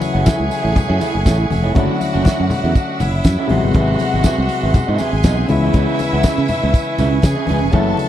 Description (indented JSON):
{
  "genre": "disco",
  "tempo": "120 BPM",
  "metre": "4/4",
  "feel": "straight",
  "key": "unclear",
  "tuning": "A4 = 440 Hz",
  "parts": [
    { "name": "clear studio string section", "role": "second line", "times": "0.0-8.1 s", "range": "E4 to A5", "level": "-24 LUFS", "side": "left 2 dB", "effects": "none" },
    { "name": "auto-wah clav", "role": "accompaniment", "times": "0.0-8.1 s", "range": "B#2 to E4", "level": "-22 LUFS", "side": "left 4 dB", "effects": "overdrive" },
    { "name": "electric guitar at the edge of break-up", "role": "accompaniment", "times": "0.0-8.0 s", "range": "B#3 to F#5", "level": "-23 LUFS", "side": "right 7 dB", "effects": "none" },
    { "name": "tonewheel organ", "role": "sustained chords", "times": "0.0-8.1 s", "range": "A3 to D6", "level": "-25 LUFS", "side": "right 1 dB", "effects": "stopped rotary speaker" },
    { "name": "damped 70s drum kit", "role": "drums", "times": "0.0-8.1 s", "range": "hi-hat, kick drum, snare drum", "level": "-14 LUFS", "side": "equal", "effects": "none" },
    { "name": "congas", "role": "percussion", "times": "0.0-8.1 s", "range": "none", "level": "-24 LUFS", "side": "left 3 dB", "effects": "none" },
    { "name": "tambourine", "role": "percussion", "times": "0.0-8.1 s", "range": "none", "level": "-35 LUFS", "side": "right 14 dB", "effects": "none" },
    { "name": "fingered electric bass", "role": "bass", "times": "0.1-7.9 s", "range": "E#1 to C#3", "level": "-18 LUFS", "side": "equal", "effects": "none" }
  ],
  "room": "little or no reverb",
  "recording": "dry, close 1970s-style studio recording",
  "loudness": "-14 LUFS",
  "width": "side -11 dB against mid",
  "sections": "0.0-8.1 A section",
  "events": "none",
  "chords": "0.0 F#m7; 1.8 Dmaj9/F#; 3.5 G#7alt; 5.5 C#m7"
}